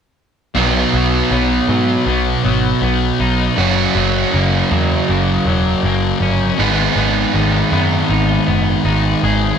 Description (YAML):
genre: rock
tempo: 80 BPM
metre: 4/4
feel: straight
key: B major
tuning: A4 = 440 Hz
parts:
  - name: crunchy overdriven guitar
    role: riff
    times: 0.5-9.6 s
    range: F#2 to G#4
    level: -18 LUFS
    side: right 9 dB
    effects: reverse reverb
  - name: thick fuzz guitar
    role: riff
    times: 0.5-9.6 s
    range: F#2 to B3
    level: -18 LUFS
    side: left 9 dB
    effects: distortion, lush chorus
  - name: electric guitar at the edge of break-up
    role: arpeggios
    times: 0.6-9.6 s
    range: F#3 to G#4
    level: -22 LUFS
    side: left 2 dB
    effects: wide subtle chorus, tape echo
  - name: vintage muted picked electric bass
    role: bass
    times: 0.6-9.5 s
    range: E1 to G#2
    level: -19 LUFS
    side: equal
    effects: none
room: moderate booth ambience, RT60 0.2 s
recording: none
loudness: -13 LUFS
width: side -7 dB against mid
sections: 0.6-9.6 A section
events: none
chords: 0.6 B; 3.6 F#; 6.6 G#m